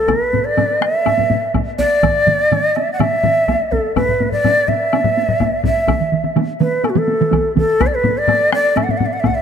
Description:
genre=japanese traditional, taiko drum ensemble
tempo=125 BPM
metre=4/4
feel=straight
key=E suspended pentatonic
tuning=A4 = 439 Hz
part: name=breathy shakuhachi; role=melody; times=0.0-9.4 s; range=F#4 to F#5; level=-15 LUFS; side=equal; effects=none
part: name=taiko ensemble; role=percussion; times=0.1-9.4 s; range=none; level=-23 LUFS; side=right 1 dB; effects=none
part: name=taiko ensemble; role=percussion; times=0.1-9.4 s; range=none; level=-23 LUFS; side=left 1 dB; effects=none
part: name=woodblock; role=percussion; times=0.1-9.4 s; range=none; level=-27 LUFS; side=left 4 dB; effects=none
part: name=solo taiko drums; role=percussion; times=0.3-9.4 s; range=none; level=-22 LUFS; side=left 7 dB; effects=none
part: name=taiko ensemble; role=percussion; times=2.0-7.7 s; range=none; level=-19 LUFS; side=right 5 dB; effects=none
room=moderate huge ambient reverb, RT60 4.5 s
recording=dark, warm production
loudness=-13 LUFS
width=side -7 dB against mid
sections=0.0-9.4 A section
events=none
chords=none

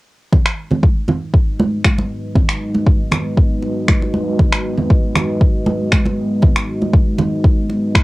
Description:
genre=afro house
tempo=118 BPM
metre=4/4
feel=straight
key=G# minor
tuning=A4 = 440 Hz
part: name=dark analog pad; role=sustained chords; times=1.3-8.0 s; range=G#3 to D#5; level=-21 LUFS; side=equal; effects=chorus, sidechain pumping, cassette tape
part: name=electronic kick drum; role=drums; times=0.3-8.0 s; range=none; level=-13 LUFS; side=equal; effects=overdrive, cassette tape
part: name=congas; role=percussion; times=0.3-8.0 s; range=none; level=-20 LUFS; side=right 2 dB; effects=none
part: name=electronic finger snaps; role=drums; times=0.5-8.0 s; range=none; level=-18 LUFS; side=equal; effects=cassette tape
room=moderate booth ambience, RT60 0.2 s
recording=home recording on cassette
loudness=-14 LUFS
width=side -20 dB against mid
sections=0.3-8.0 A section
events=filter sweep on analog synth pad 0.3-8.0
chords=0.3 G#m7

